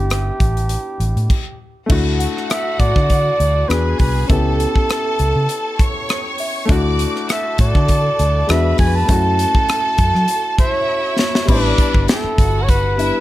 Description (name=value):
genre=lush 1970s-style soul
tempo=100 BPM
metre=4/4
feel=swing 54% on 16ths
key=unclear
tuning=A4 = 437 Hz
part: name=warm flugelhorn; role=melody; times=0.0-13.2 s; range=G4 to A5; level=-20 LUFS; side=right 1 dB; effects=none
part: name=warm concert grand piano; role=accompaniment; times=0.0-13.2 s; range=G3 to G#4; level=-24 LUFS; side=left 4 dB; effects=none
part: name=vintage muted fingered electric bass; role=bass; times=0.0-13.1 s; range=G1 to F#3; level=-18 LUFS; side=equal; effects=none
part: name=modern studio drum kit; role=drums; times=0.1-13.1 s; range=crash cymbal, hi-hat, kick drum, rim click, snare drum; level=-18 LUFS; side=equal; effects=none
part: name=bright studio string section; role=second line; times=1.9-13.2 s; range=D4 to D6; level=-25 LUFS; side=equal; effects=none
part: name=small celesta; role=texture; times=2.2-13.1 s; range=E5 to B5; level=-33 LUFS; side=left 1 dB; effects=none
room=studio reverb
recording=none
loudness=-14 LUFS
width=side -15 dB against mid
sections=0.0-1.9 A section; 1.9-11.5 B section; 11.5-13.2 C section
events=drum fill 10.9-11.5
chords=0.0 A7sus4; 1.9 D; 3.7 E9; 4.3 A9/C#; 6.7 D; 8.5 E9; 9.1 F#m7; 11.5 A9sus4